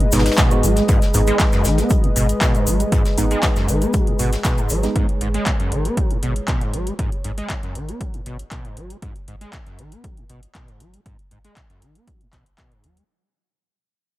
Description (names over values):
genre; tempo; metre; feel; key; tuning
acid house; 118 BPM; 4/4; straight; G# minor; A4 = 440 Hz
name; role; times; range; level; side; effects
warm analog pad; sustained chords; 0.0-13.1 s; G#3 to D#5; -25 LUFS; equal; chorus, sidechain pumping
overdriven acid bass; riff; 0.0-13.0 s; F#2 to B3; -24 LUFS; equal; distortion, tube saturation, ensemble chorus, tape echo
electro analog drum machine; drums; 0.0-13.1 s; handclaps, hi-hat; -26 LUFS; left 1 dB; none
percussive organ stab; stabs; 0.1-5.1 s; G#3 to F#4; -26 LUFS; right 2 dB; chorus, tape echo
round analog bass; bass; 0.1-13.0 s; G#1 to D#2; -22 LUFS; equal; sidechain pumping
soft brush drum kit; drums; 0.1-5.0 s; hi-hat, snare drum; -31 LUFS; left 2 dB; high-pass filter on hats, high-pass filter on snare, high-pass filter on room
egg shaker; percussion; 0.1-4.9 s; none; -31 LUFS; left 2 dB; none
electronic kick drum; drums; 0.4-12.7 s; none; -20 LUFS; equal; none
room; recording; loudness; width
little or no reverb; none; -16 LUFS; side -16 dB against mid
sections
0.0-13.1 A section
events
fade-out 0.0-13.1; filter sweep on acid bass 0.0-13.1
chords
0.0 G#m